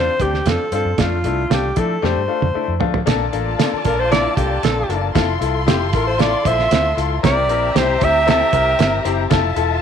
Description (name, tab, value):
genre	uptempo 1960s-style soul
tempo	115 BPM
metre	4/4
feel	straight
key	unclear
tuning	A4 = 439 Hz
part	breathy alto saxophone	melody	0.0-9.0 s	F4 to E5	-19 LUFS	right 2 dB	none
part	bright upright piano	accompaniment	0.0-9.7 s	A3 to C5	-22 LUFS	left 13 dB	none
part	vintage muted fingered electric bass	bass	0.0-9.8 s	E1 to F3	-23 LUFS	equal	none
part	cloth-damped thuddy drum kit	drums	0.2-9.7 s	hi-hat, kick drum, snare drum, toms	-20 LUFS	right 5 dB	none
part	dark symphonic violin section	second line	3.1-9.8 s	F4 to C6	-24 LUFS	left 2 dB	none
room	light reverb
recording	1960s-style stereo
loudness	-15 LUFS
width	side -8 dB against mid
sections	0.0-3.1 A section; 3.1-9.8 B section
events	drum fill 2.0-3.1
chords	0.0 Dm7; 1.0 F6; 3.1 Bbmaj7; 5.2 Fmaj7; 7.2 C7; 9.3 Fmaj7